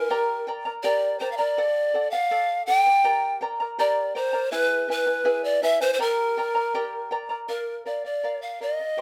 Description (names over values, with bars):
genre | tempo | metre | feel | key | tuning
andean folk | 81 BPM | 2/4 | straight | G harmonic minor | A4 = 440 Hz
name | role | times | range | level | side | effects
breathy polished pan flute | melody | 0.0-9.0 s | Bb4 to G5 | -25 LUFS | equal | none
charango | accompaniment | 0.0-9.0 s | E4 to Bb5 | -30 LUFS | equal | none
room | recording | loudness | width
light reverb | none | -24 LUFS | mono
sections
0.0-7.5 A section; 7.5-9.0 B section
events
none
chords
0.1 Gm; 1.6 D; 3.0 Gm; 4.5 E; 6.0 Gm; 7.5 Bb